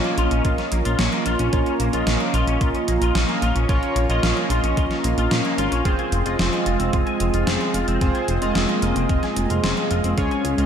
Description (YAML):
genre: synthwave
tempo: 111 BPM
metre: 4/4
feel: straight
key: Bb minor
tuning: A4 = 441 Hz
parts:
  - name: chorused pulse-width pad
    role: sustained chords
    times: 0.0-10.7 s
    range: Ab3 to F4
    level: -26 LUFS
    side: right 1 dB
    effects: sidechain pumping, shimmer reverb
  - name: clean electric guitar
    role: arpeggios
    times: 0.0-10.7 s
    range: Ab3 to Ab5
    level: -28 LUFS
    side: left 3 dB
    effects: ensemble chorus, low-pass filter, ping-pong delay, shimmer reverb
  - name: chorused polysynth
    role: stabs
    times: 0.0-10.7 s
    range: C4 to F5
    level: -25 LUFS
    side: right 2 dB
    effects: cassette tape, ping-pong delay, shimmer reverb
  - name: gated 80s digital drum machine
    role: drums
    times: 0.0-10.7 s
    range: hi-hat, snare drum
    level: -26 LUFS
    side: equal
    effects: gated reverb, gated reverb snare, overdrive
  - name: chorused synth bass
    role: bass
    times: 0.2-10.7 s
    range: F1 to Bb2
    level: -23 LUFS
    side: equal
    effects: sidechain pumping
  - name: electronic kick drum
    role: drums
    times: 0.4-10.3 s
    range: none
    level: -22 LUFS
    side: equal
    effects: overdrive
room: wet lush hall reverb, RT60 2.1 s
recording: bright 1980s-style digital production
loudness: -18 LUFS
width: side -8 dB against mid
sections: 0.0-10.7 A section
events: filter sweep on clean electric guitar 0.0-10.7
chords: 0.0 Bbm; 5.9 Fm